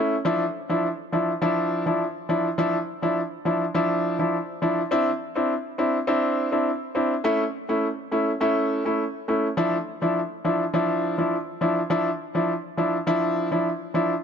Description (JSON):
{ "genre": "dancehall", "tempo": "103 BPM", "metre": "4/4", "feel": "straight", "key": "D minor", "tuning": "A4 = 440 Hz", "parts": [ { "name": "clear baby grand piano", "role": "solo", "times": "0.0-14.1 s", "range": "F3 to E4", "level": "-22 LUFS", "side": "equal", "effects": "ping-pong delay" } ], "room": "light reverb, small room ambience", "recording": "dark, warm production", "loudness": "-22 LUFS", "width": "side -7 dB against mid", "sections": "0.3-14.2 A section", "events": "none", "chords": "0.3 Dmadd9; 4.9 Cadd9; 7.2 A; 9.6 Dmadd9", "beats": "| 0.25 0.84 1.42 2.00 | 2.58 3.17 3.75 4.33 | 4.91 5.50 6.08 6.66 | 7.24 7.83 8.41 8.99 | 9.57 10.16 10.74 11.32 | 11.90 12.49 13.07 13.65" }